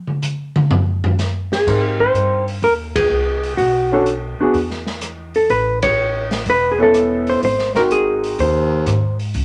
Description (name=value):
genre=jazz, small-group swing and bop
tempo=125 BPM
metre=4/4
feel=swing 68% on 8ths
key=unclear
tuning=A4 = 440 Hz
part: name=open jazz drum kit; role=drums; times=0.1-9.4 s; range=crash cymbal, hi-hat, kick drum, ride cymbal, rim click, snare drum, toms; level=-24 LUFS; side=equal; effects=none
part: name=hollow-body jazz guitar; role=melody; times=1.5-9.2 s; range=F#4 to C#5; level=-19 LUFS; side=equal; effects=none
part: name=warm concert grand piano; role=accompaniment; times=1.7-8.4 s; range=B3 to Bb4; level=-21 LUFS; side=equal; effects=none
part: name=upright bass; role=bass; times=1.7-9.4 s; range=E1 to Ab2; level=-26 LUFS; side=equal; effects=none
part: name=breathy baritone saxophone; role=second line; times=8.4-9.2 s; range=Eb2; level=-22 LUFS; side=equal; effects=none
room=moderate large studio reverb, RT60 0.8 s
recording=none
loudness=-17 LUFS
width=mono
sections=0.0-1.7 A section; 1.7-9.4 B section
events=drum solo 0.0-1.7; band accent 2.9, 5.8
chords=0.0 N.C.; 1.7 Abmaj7; 3.6 Bm7; 4.5 N.C.; 5.5 Aadd9; 7.4 Ab7